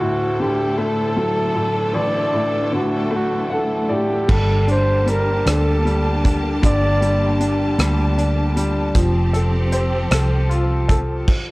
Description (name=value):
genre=six-eight pop ballad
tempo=52 BPM (dotted quarters)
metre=6/8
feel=straight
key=G minor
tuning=A4 = 440 Hz
part: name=warm flugelhorn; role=melody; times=0.0-7.5 s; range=F#4 to D5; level=-22 LUFS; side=equal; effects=digital delay
part: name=bright upright piano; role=accompaniment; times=0.0-11.3 s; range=A1 to F#5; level=-22 LUFS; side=left 2 dB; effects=none
part: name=bright studio string section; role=sustained chords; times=0.0-11.3 s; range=A2 to A5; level=-26 LUFS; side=right 1 dB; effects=none
part: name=vintage muted fingered electric bass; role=bass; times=4.3-11.2 s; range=F1 to D2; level=-19 LUFS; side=equal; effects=none
part: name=modern studio drum kit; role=drums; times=4.3-11.5 s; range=crash cymbal, hi-hat, kick drum, rim click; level=-20 LUFS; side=equal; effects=none
room=light reverb, small room ambience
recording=worn, warbling old tape, cassette tape, warbly pitch drift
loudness=-16 LUFS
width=side -22 dB against mid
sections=0.0-4.3 A section; 4.3-11.5 B section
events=upright piano fill 3.1-4.3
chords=0.0 D; 4.3 Gmadd9; 9.0 Fadd9